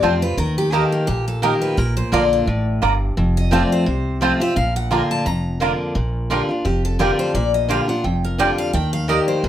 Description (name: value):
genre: bluegrass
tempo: 172 BPM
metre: 4/4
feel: swing 55% on 8ths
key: Bb major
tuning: A4 = 440 Hz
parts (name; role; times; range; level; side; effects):
- picked steel-string acoustic guitar; melody; 0.0-9.5 s; F4 to Bb5; -23 LUFS; left 4 dB; none
- picked steel-string acoustic guitar; accompaniment; 0.0-9.5 s; F2 to G4; -20 LUFS; left 1 dB; none
- mandolin; stabs; 0.0-9.2 s; Bb3 to Bb5; -20 LUFS; right 4 dB; none
- upright bass; bass; 0.0-9.5 s; F1 to F2; -22 LUFS; equal; none
room: moderate studio reverb, RT60 0.6 s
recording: none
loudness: -17 LUFS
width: side -11 dB against mid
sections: 0.0-6.0 A section; 6.0-9.5 B section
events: steel-string acoustic guitar solo 6.0-9.5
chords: 0.4 Eb; 1.8 Bb; 3.2 F; 4.6 Bb; 6.0 Bb6; 8.7 Eb